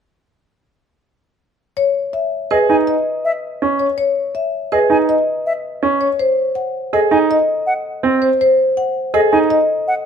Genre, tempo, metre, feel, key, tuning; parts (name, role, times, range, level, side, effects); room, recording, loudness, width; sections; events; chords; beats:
classical, minimalist pattern music; 163 BPM; 6/4; straight; C# minor; A4 = 441 Hz
marimba with soft mallets; melody; 1.8-9.7 s; A4 to F#5; -17 LUFS; left 3 dB
bright baby grand piano; arpeggios; 2.5-9.6 s; B#3 to G#4; -16 LUFS; right 5 dB
concert flute; arpeggios; 2.5-9.9 s; D#5 to G#5; -20 LUFS; equal
light reverb; -14 LUFS; side -7 dB against mid
1.8-10.1 A section
1.8 C#5; 6.2 G#
| 1.77 2.14 2.51 2.88 3.25 3.62 | 3.98 4.35 4.72 5.09 5.46 5.82 | 6.19 6.56 6.93 7.30 7.66 8.03 | 8.40 8.77 9.14 9.50 9.87